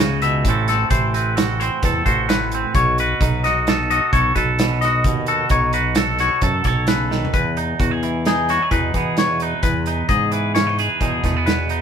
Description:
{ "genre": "math rock and midwest emo", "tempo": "131 BPM", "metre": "5/4", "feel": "straight", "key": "E major", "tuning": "A4 = 440 Hz", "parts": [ { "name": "twangy electric guitar", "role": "accompaniment", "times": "0.0-11.8 s", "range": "E2 to A4", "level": "-22 LUFS", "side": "right 6 dB", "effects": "none" }, { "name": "twangy electric guitar", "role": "arpeggios", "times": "0.0-11.8 s", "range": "G#4 to E5", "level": "-21 LUFS", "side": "left 5 dB", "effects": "none" }, { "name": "fat analog bass", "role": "bass", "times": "0.0-11.8 s", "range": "A1 to G#2", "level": "-23 LUFS", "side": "left 1 dB", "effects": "none" }, { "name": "loose indie drum kit", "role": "drums", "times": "0.0-11.8 s", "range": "hi-hat, kick drum, snare drum, toms", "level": "-22 LUFS", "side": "right 1 dB", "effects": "none" } ], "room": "moderate studio reverb, RT60 0.7 s", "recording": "band playing live in one room", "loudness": "-16 LUFS", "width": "side -8 dB against mid", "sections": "0.0-7.3 A section; 7.3-11.8 B section", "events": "drum fill 7.1", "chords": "0.5 Am6; 2.8 B9; 7.3 Emaj7" }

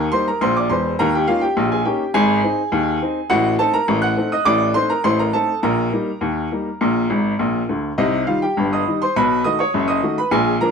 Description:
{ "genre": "ragtime piano", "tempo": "103 BPM", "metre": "2/4", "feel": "straight", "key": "Eb major", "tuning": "A4 = 439 Hz", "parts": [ { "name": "clear upright piano", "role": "solo", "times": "0.0-10.7 s", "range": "Fb1 to F#6", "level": "-16 LUFS", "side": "equal", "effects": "none" } ], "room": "moderate small room reverb, RT60 0.5 s", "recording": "none", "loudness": "-16 LUFS", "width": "side -6 dB against mid", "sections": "0.0-10.7 A section", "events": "upright piano fill 7.1-8.0", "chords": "0.0 Eb; 1.0 Eb7; 2.2 Ab; 3.3 Adim7; 5.6 Eb/Bb; 6.8 Bb; 8.0 Cm; 9.1 B7" }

